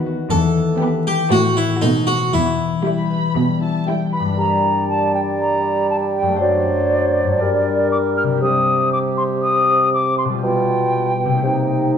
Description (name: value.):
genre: cinematic, playful, whimsical film cue.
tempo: 119 BPM.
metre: 4/4.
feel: straight.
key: E minor, G minor from 4.4 s.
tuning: A4 = 440 Hz.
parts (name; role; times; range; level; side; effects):
warm studio violin section; melody; 0.0-4.4 s; G5 to C6; -30 LUFS; left 2 dB; none.
rich studio violin section; second line; 0.0-4.3 s; E4 to G4; -28 LUFS; left 1 dB; none.
rich studio viola section; accompaniment; 0.0-4.3 s; G3 to B3; -25 LUFS; right 3 dB; none.
concert harp; arpeggios; 0.0-12.0 s; F#2 to C5; -21 LUFS; left 6 dB; none.
harpsichord; melody; 0.3-3.8 s; D#4 to A4; -20 LUFS; equal; none.
rich studio cello section; bass; 0.3-3.8 s; E2 to B2; -23 LUFS; right 4 dB; none.
mellow hollow silver concert flute; second line; 3.9-11.9 s; D5 to F6; -19 LUFS; equal; none.
warm clarinet; second line; 4.4-12.0 s; Eb4 to D5; -24 LUFS; left 2 dB; none.
warm bassoon; accompaniment; 4.4-12.0 s; B2 to G3; -21 LUFS; right 4 dB; none.
room: wet recital hall reverb, RT60 1.6 s.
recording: dark, warm production.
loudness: -15 LUFS.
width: side -8 dB against mid.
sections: 0.0-4.4 A section; 4.4-12.0 B section.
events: none.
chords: 0.3 Em; 1.3 F#dim/A; 1.8 B7b9; 2.3 Em; 4.4 Gm; 6.4 D7/F#; 7.4 Gm; 8.4 Cm; 10.4 G7/B; 11.4 Cm7.